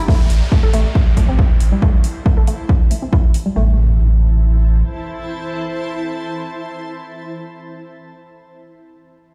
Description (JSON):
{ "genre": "driving peak-time techno", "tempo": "138 BPM", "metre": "4/4", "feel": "straight", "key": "A minor", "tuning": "A4 = 440 Hz", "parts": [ { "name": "woody wave-folded pluck", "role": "riff", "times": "0.0-3.8 s", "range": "G3 to A4", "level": "-26 LUFS", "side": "equal", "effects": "tube saturation, analog chorus, sidechain pumping, delay" }, { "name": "granular cloud pad", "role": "texture", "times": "0.0-7.8 s", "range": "E4 to A5", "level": "-31 LUFS", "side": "equal", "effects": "built-in reverb, sidechain pumping" }, { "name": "electronic kick drum", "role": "drums", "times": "0.1-3.2 s", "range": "none", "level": "-16 LUFS", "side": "equal", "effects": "none" }, { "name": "downlifter and impact", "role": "sound effects", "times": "0.1-8.3 s", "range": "none", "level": "-33 LUFS", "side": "equal", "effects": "none" }, { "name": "warm sub bass", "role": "bass", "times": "0.2-4.8 s", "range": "A1", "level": "-16 LUFS", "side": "equal", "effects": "overdrive, sidechain pumping, low-pass filter" }, { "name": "electronic hi-hat", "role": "drums", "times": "0.3-3.4 s", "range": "none", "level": "-36 LUFS", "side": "equal", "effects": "none" } ], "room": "little or no reverb", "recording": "played on a big sound system in a bare room, stone room reverb", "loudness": "-16 LUFS", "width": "mono", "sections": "0.1-3.6 A section; 3.6-7.0 B section", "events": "fade-out on ambient pad 0.1-3.6; filter sweep on synth arpeggio sound 0.1-3.6", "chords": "0.1 Am", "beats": "| 0.08 0.52 0.95 1.39 | 1.82 2.26 2.69 3.13 | 3.56 4.00 4.43 4.87 | 5.30 5.74 6.17 6.61" }